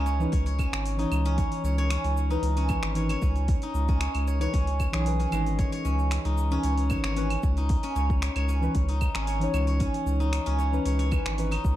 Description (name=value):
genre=organic downtempo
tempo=114 BPM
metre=4/4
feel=straight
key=C# minor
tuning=A4 = 441 Hz
part: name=steel-string zither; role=arpeggios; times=0.0-11.8 s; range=G#3 to C#5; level=-31 LUFS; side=right 1 dB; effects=digital delay
part: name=round analog bass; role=bass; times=0.0-11.8 s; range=G#1 to C#2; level=-26 LUFS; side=equal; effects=none
part: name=deep house drum kit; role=drums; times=0.1-11.8 s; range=claves, finger snaps, hi-hat, shaker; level=-36 LUFS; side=right 1 dB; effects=overdrive
part: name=muted felt-like synth keys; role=accompaniment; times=0.2-11.5 s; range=E3 to C#5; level=-32 LUFS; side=left 1 dB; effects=chorus, sidechain pumping, digital delay
part: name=electronic kick drum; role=drums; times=0.3-11.8 s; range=none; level=-27 LUFS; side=equal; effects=overdrive
room=light reverb, digital ambience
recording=dark, warm production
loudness=-24 LUFS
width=side -13 dB against mid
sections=0.0-11.8 A section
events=none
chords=0.0 C#m9